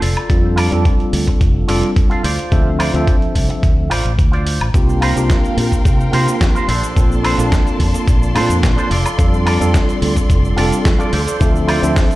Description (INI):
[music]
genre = nu-disco, nu disco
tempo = 108 BPM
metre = 4/4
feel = straight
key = unclear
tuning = A4 = 438 Hz
[part]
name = electric guitar with an envelope filter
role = riff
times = 0.0-12.0 s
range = D4 to A5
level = -23 LUFS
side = right 2 dB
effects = wide subtle chorus, digital delay
[part]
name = fingered electric bass with an envelope filter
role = bass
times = 0.0-11.9 s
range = F1 to C3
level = -17 LUFS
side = equal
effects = none
[part]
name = dusty soul sampler-style drum kit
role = drums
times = 0.0-12.2 s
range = hi-hat, shaker, snare drum, woodblock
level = -23 LUFS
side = equal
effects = none
[part]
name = tine electric piano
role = accompaniment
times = 0.3-12.2 s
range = F3 to E5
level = -20 LUFS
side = equal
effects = medium stereo tremolo, sidechain pumping, low-pass filter, digital delay
[part]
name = electronic kick drum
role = drums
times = 0.3-12.1 s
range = none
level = -14 LUFS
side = equal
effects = none
[part]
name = dark studio string section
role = sustained chords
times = 4.7-12.2 s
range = Bb3 to C6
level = -25 LUFS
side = equal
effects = sidechain pumping
[sound]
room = light reverb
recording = played on a big sound system in a bare room, stone room reverb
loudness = -12 LUFS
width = side -17 dB against mid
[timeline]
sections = 0.0-12.2 A section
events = clean electric guitar fill 0.0; filter sweep on tine electric piano 0.0-12.2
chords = 0.0 F6; 2.2 Dm7; 4.7 C7sus4; 6.7 Bbmaj9; 8.9 F6; 11.1 Dm7